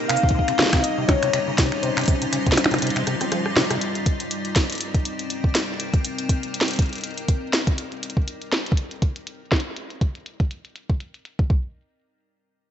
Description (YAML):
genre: IDM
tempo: 121 BPM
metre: 4/4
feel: swing 56% on 16ths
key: C phrygian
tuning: A4 = 440 Hz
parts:
  - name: warbly lo-fi synth keys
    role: melody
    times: 0.0-3.3 s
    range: Bb4 to F5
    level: -26 LUFS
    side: left 3 dB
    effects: chorus, phaser, tape echo
  - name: icy glass pad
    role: sustained chords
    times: 0.0-7.8 s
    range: G3 to Eb5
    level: -28 LUFS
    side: left 1 dB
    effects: chorus, built-in reverb
  - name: deep acid bass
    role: arpeggios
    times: 0.1-3.8 s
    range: C3 to C4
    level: -29 LUFS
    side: right 1 dB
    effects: analog chorus
  - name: glitchy drum kit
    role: drums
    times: 0.1-11.4 s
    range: finger snaps, hi-hat, percussion blips, rim click, shaker, snare drum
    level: -24 LUFS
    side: equal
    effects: low-pass filter on snare, small room ambience, low-pass filter on hats, low-pass filter on perc
  - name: electronic kick drum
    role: drums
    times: 0.2-11.6 s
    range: none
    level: -20 LUFS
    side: equal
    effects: small room ambience
room: moderate lush hall reverb, RT60 1.9 s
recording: rough home demo mix, nothing above 7.9 kHz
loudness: -20 LUFS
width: side -10 dB against mid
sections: 0.0-3.8 A section; 3.8-11.7 B section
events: kick drops out 2.8-3.8; drum fill 3.1-3.8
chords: 0.0 Eb13; 3.8 Cm7; 7.8 N.C.